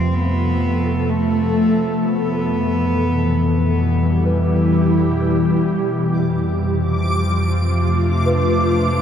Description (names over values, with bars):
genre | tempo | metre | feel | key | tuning
ambient | free time | none | none | unclear | A4 = 440 Hz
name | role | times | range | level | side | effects
warm cello | melody | 0.0-3.9 s | A3 to C4 | -24 LUFS | equal | diffuse ambient delay
ethereal airy pad | sustained chords | 0.0-9.0 s | B2 to A4 | -18 LUFS | left 1 dB | ensemble chorus, built-in reverb
celesta | arpeggios | 0.0-9.0 s | A4 to B4 | -29 LUFS | equal | ensemble chorus, diffuse ambient delay
warm sub bass | bass | 0.0-9.0 s | F2 | -21 LUFS | equal | none
backwards swelling texture | texture | 6.9-9.0 s | D6 | -25 LUFS | equal | built-in reverb, analog chorus
room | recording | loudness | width
wet cathedral reverb, RT60 5.6 s | dreamy mix soaked in reverb | -16 LUFS | side -8 dB against mid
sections
0.0-9.0 A section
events
fade-in on celesta 0.0-9.0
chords
0.0 F; 2.0 Em/F; 5.8 Dm7/F